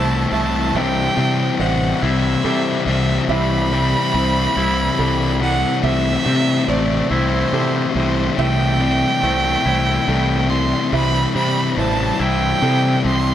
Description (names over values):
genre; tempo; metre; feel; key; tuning
rock; 47 BPM (dotted quarters); 6/8; straight; A minor; A4 = 439 Hz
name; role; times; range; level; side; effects
rich violin; melody; 0.0-13.3 s; C5 to C6; -22 LUFS; right 4 dB; analog delay
felt-muted upright piano; arpeggios; 0.0-13.3 s; A4 to E5; -30 LUFS; right 9 dB; analog delay
twangy electric guitar; arpeggios; 0.0-13.3 s; C3 to E4; -26 LUFS; right 2 dB; harmonic tremolo, analog delay
sludgy distorted guitar; riff; 0.0-13.3 s; C3 to E4; -19 LUFS; left 6 dB; overdrive
fuzz fingered electric bass; bass; 0.0-13.3 s; A1 to C3; -21 LUFS; right 1 dB; overdrive
room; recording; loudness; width
light reverb, small room ambience; none; -15 LUFS; side -11 dB against mid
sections
0.7-13.3 A section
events
none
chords
0.0 Am7/C; 0.7 Am7